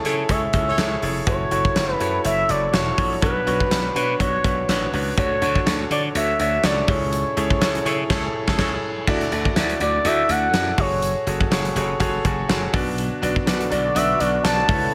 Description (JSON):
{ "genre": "1980s-style pop", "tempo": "123 BPM", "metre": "4/4", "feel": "swing 55% on 16ths", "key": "unclear", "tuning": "A4 = 439 Hz", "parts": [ { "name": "expressive synth lead", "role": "melody", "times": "0.0-14.9 s", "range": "A4 to A5", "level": "-25 LUFS", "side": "equal", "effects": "chorus" }, { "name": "clear concert grand piano", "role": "accompaniment", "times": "0.0-14.9 s", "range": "B2 to D5", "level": "-27 LUFS", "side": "equal", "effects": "none" }, { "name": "glassy slap bass", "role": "bass", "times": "0.0-14.9 s", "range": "E1 to D3", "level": "-28 LUFS", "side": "equal", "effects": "none" }, { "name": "big rock drum kit", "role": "drums", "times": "0.0-14.8 s", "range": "crash cymbal, hi-hat, kick drum, snare drum", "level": "-26 LUFS", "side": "equal", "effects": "none" }, { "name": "warm horn section", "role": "stabs", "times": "0.1-1.0, 7.9-8.7 s", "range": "C#4 to C#5", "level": "-32 LUFS", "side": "equal", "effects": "none" }, { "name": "sweeping resonant pad", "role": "sustained chords", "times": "13.0-14.9 s", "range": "C#3 to A4", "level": "-32 LUFS", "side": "equal", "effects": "chorus" } ], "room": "moderate concert hall reverb, RT60 1.9 s, studio reverb", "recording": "none", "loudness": "-21 LUFS", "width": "mono", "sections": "0.0-9.1 A section; 9.1-14.9 B section", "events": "band accent 0.0-1.3, 7.1-9.1", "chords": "0.0 Amaj7/C#; 1.3 F#m7; 3.2 Bmadd9; 5.2 Dmaj7; 6.9 Amaj7/C#; 9.1 Dadd9; 10.8 F#madd9; 12.7 Bm" }